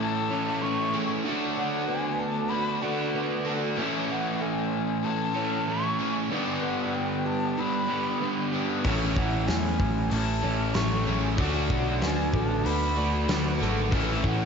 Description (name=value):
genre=rock, shoegaze and dream pop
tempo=95 BPM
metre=4/4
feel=straight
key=A major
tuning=A4 = 441 Hz
part: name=breathy concert flute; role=melody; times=0.0-14.5 s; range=F#5 to C#6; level=-33 LUFS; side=left 1 dB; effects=analog delay
part: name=fingerpicked twelve-string acoustic guitar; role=arpeggios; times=0.0-14.5 s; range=E3 to A4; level=-37 LUFS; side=right 4 dB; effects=wide subtle chorus, analog delay
part: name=overdriven electric guitar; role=riff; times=0.0-14.5 s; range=G2 to F#4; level=-31 LUFS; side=left 10 dB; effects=lush chorus
part: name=overdriven semi-hollow guitar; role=riff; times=0.0-14.5 s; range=G2 to A4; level=-30 LUFS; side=right 8 dB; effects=reverse reverb
part: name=overdriven semi-hollow guitar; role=riff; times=0.0-14.5 s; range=G2 to F#4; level=-34 LUFS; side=right 1 dB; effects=wide subtle chorus
part: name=fuzz picked electric bass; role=bass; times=8.8-14.5 s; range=G#1 to E2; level=-28 LUFS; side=equal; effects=overdrive
part: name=big rock drum kit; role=drums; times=8.8-14.4 s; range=hi-hat, kick drum, snare drum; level=-30 LUFS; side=equal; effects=none
room=wet plate reverb, RT60 1.4 s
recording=dreamy mix soaked in reverb, nothing above 7.6 kHz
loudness=-24 LUFS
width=side -6 dB against mid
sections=0.0-14.5 A section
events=none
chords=0.0 Amaj7; 1.3 D6; 3.8 Amaj7; 6.3 G; 8.8 Amaj7; 11.4 D6; 13.9 A